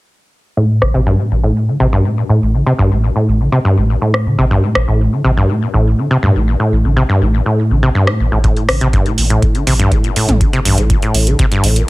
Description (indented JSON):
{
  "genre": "acid house",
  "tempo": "122 BPM",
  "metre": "4/4",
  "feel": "straight",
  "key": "A phrygian",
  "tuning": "A4 = 440 Hz",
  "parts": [
    { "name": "acid bass, saw", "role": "riff", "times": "0.6-11.8 s", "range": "G2 to D3", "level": "-13 LUFS", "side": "equal", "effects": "sidechain pumping, ping-pong delay" },
    { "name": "round analog bass", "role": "bass", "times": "0.8-11.8 s", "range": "A1 to A2", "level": "-15 LUFS", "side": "equal", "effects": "tube saturation, sidechain pumping" },
    { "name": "electro analog drum machine", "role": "drums", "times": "0.8-0.9, 4.1-4.9, 8.1-11.9 s", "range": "hi-hat, rim click, toms", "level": "-18 LUFS", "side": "right 1 dB", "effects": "low-pass filter on snare, small room ambience, low-pass filter on hats, low-pass filter on toms" },
    { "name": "electronic kick drum", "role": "drums", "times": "8.4-11.5 s", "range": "none", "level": "-15 LUFS", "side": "equal", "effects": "small room ambience" }
  ],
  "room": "moderate studio reverb, RT60 0.6 s",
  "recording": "heavily compressed radio sound, multiband compression",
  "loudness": "-11 LUFS",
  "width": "side -21 dB against mid",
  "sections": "0.6-11.9 A section",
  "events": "filter sweep on drum 0.6-11.9; filter sweep on acid bass 0.6-11.9",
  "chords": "0.6 A7(no3)"
}